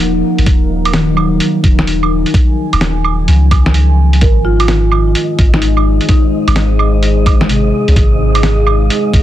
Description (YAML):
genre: future garage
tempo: 128 BPM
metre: 4/4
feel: swing 65% on 16ths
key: unclear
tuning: A4 = 440 Hz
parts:
  - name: muted felt-like synth keys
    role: accompaniment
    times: 0.0-9.2 s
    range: C3 to Bb3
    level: -19 LUFS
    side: right 2 dB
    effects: chorus, sidechain pumping, analog delay
  - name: deep dark ambient pad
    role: sustained chords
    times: 0.0-9.2 s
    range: Ab3 to Ab5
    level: -18 LUFS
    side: left 2 dB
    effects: chorus, built-in reverb, sidechain pumping
  - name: soft 808-style bass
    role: bass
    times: 0.0-9.2 s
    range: Eb1 to Db2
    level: -12 LUFS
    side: equal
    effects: sidechain pumping
  - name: lo-fi sampler-style drum kit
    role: drums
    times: 0.0-9.2 s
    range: claves, hi-hat, snare drum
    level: -17 LUFS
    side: right 2 dB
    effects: overdrive
  - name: electronic kick drum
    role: drums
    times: 0.5-9.2 s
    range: none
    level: -11 LUFS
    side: equal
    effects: none
  - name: marimba with medium mallets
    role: melody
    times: 4.2-6.8 s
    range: Eb4 to Bb4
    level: -19 LUFS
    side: left 1 dB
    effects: tape echo
  - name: wind-like tuned noise texture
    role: texture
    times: 4.9-9.2 s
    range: Eb4 to Eb5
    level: -24 LUFS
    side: left 1 dB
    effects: built-in reverb
room: light reverb, digital ambience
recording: dense, heavily limited modern master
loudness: -9 LUFS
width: side -13 dB against mid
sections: 0.0-9.2 A section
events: none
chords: 0.0 Ebmadd9; 4.2 Ab6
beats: 0.00 | 0.47 0.94 1.41 1.88 | 2.34 2.81 3.28 3.75 | 4.22 4.69 5.16 5.62 | 6.09 6.56 7.03 7.50 | 7.97 8.44 8.91